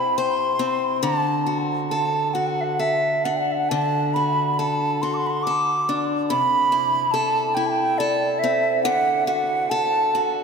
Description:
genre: celtic folk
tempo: 69 BPM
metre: 3/4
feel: uneven beats, rubato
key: unclear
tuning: A4 = 440 Hz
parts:
  - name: hollow wooden flute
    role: melody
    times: 0.0-10.3 s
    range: D5 to D6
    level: -20 LUFS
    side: right 2 dB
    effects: diffuse ambient delay
  - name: picked steel-string acoustic guitar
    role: accompaniment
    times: 0.0-10.4 s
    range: C3 to C5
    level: -25 LUFS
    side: left 2 dB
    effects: none
room: wet cathedral reverb, RT60 5.4 s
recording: dreamy mix soaked in reverb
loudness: -19 LUFS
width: side -5 dB against mid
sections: 0.0-10.4 A section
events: none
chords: 0.0 C; 1.0 D; 6.3 Am/C; 8.9 Dadd9

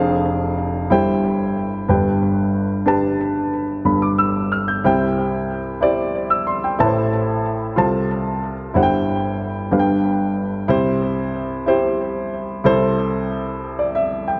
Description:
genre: gospel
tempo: 61 BPM (dotted quarters)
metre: 6/8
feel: straight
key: C major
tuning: A4 = 441 Hz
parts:
  - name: warm baby grand piano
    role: solo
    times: 0.0-14.4 s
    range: F1 to G6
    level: -20 LUFS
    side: equal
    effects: tape echo
room: wet scoring stage reverb, RT60 1.7 s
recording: none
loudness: -20 LUFS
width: mono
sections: 0.0-10.7 A section; 10.7-14.4 B section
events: none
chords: 0.0 Fm6; 0.9 C/G; 1.9 G; 4.8 C; 6.8 Am; 7.8 F/C; 8.7 C/G; 9.7 G; 10.7 C; 12.7 Am/C

